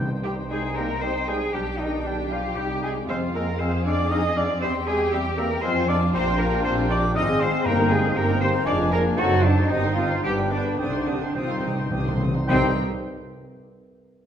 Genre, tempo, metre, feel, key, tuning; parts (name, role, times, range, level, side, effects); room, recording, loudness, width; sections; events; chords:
quick classical-period movement for symphony orchestra; 104-120 BPM; 3/4; rubato; C minor; A4 = 439 Hz
muted chamber violin section; melody; 0.0-12.8 s; F5 to Eb6; -37 LUFS; left 1 dB
clear clarinet; second line; 0.0-12.7 s; C4 to Eb4; -33 LUFS; left 2 dB
warm oboe; second line; 0.0-12.7 s; E5 to A5; -34 LUFS; right 1 dB
clear bassoon; accompaniment; 0.0-12.7 s; G3 to C4; -34 LUFS; right 1 dB
muted chamber viola section; accompaniment; 0.0-12.8 s; Ab3 to C5; -32 LUFS; equal
muted chamber double bass section; bass; 0.0-12.8 s; F1 to F2; -26 LUFS; right 2 dB
timpani; percussion; 0.0-0.7, 7.7-8.4, 10.8-12.7 s; G2 to C3; -29 LUFS; equal
concert flute; second line; 0.2-12.8 s; C5 to Eb6; -32 LUFS; left 2 dB
mellow French horn section; sustained chords; 0.2-12.7 s; C3 to Eb4; -29 LUFS; left 4 dB
muted chamber cello section; bass; 0.2-12.8 s; C4 to Eb5; -27 LUFS; right 1 dB
muted symphonic violin section; second line; 0.5-12.8 s; B3 to Ab4; -33 LUFS; left 3 dB
wet recital hall reverb, RT60 1.6 s; minimal, uncompressed stereo recording; -21 LUFS; side -9 dB against mid
0.0-12.5 A section; 12.5-14.1 B section
timpani fill 10.8-12.5
0.0 Cm; 1.5 G/B; 2.6 Cm; 3.1 Fm; 4.6 C/E; 5.6 Fm; 6.1 Gm/Bb; 7.2 Fm/Ab; 7.7 Eb/G; 8.7 Ddim/F; 9.2 F#dim7; 9.7 Cm/G; 10.2 G; 10.8 Cm